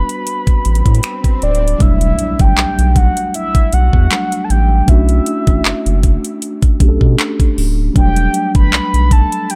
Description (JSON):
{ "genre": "contemporary R&B", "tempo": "78 BPM", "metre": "4/4", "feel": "swing 54% on 16ths", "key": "E dorian", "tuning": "A4 = 439 Hz", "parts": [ { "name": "mellow horn-like synth lead", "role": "melody", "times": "0.0-9.6 s", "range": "D5 to B5", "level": "-22 LUFS", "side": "equal", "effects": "chorus, dub echo" }, { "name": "mellow tine electric piano", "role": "accompaniment", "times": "0.0-9.6 s", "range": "F#3 to A4", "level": "-23 LUFS", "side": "equal", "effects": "dub echo" }, { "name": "saturated sub bass", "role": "bass", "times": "0.0-9.3 s", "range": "D1 to B2", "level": "-16 LUFS", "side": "equal", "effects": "none" }, { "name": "swell and impact", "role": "sound effects", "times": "0.5-4.9 s", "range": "none", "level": "-30 LUFS", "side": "equal", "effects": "none" }, { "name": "smooth R&B drum kit", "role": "drums", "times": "0.1-9.6 s", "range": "finger snaps, handclaps, hi-hat, kick drum", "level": "-15 LUFS", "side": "equal", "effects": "none" } ], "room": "little or no reverb", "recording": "echo-heavy mix", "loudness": "-13 LUFS", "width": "mono", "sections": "0.0-1.8 A section; 1.8-9.6 B section", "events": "swell 0.5-1.8; impact 1.8-4.9", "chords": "0.0 A13sus4; 1.8 Em11; 4.9 Bm9; 8.0 Em11" }